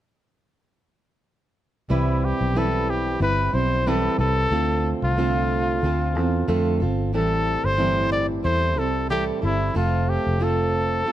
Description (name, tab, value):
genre	pop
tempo	92 BPM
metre	4/4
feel	swing 55% on 16ths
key	C major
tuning	A4 = 441 Hz
part	warm trumpet	melody	1.9-11.1 s	E4 to D5	-24 LUFS	left 1 dB	none
part	fingerpicked plugged-in steel-string acoustic guitar	accompaniment	1.9-11.1 s	A2 to B4	-25 LUFS	right 3 dB	none
part	vintage muted fingered electric bass	bass	1.9-11.0 s	F1 to F2	-24 LUFS	left 1 dB	none
room	little or no reverb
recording	close, detailed microphones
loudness	-20 LUFS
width	side -12 dB against mid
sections	1.9-11.1 A section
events	none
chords	1.9 Cmaj7; 4.5 Dm7; 7.1 Am7; 9.8 F